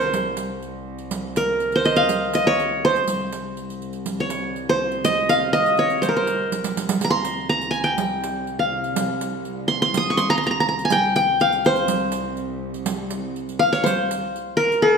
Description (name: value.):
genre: Arabic maqam ensemble.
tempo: 122 BPM.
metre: 4/4.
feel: straight.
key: C maqam kurd.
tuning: A4 = 441 Hz.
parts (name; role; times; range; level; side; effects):
qanun; melody; 0.0-15.0 s; Ab4+50c to Eb6; -19 LUFS; equal; none.
warm studio cello section; drone; 0.0-14.9 s; C2; -30 LUFS; right 1 dB; none.
riq; percussion; 0.0-14.8 s; none; -28 LUFS; right 6 dB; none.
room: wet recital hall reverb, RT60 1.4 s.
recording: minimal, uncompressed stereo recording.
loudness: -19 LUFS.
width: side -6 dB against mid.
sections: 0.0-14.8 A section.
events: drum fill 6.5-7.0.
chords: none.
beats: 0.14 0.63 | 1.12 1.61 2.10 2.59 | 3.08 3.57 4.06 4.55 | 5.04 5.53 6.02 6.51 | 7.00 7.49 7.98 8.47 | 8.96 9.45 9.94 10.43 | 10.92 11.41 11.89 12.38 | 12.87 13.36 13.85 14.34 | 14.83.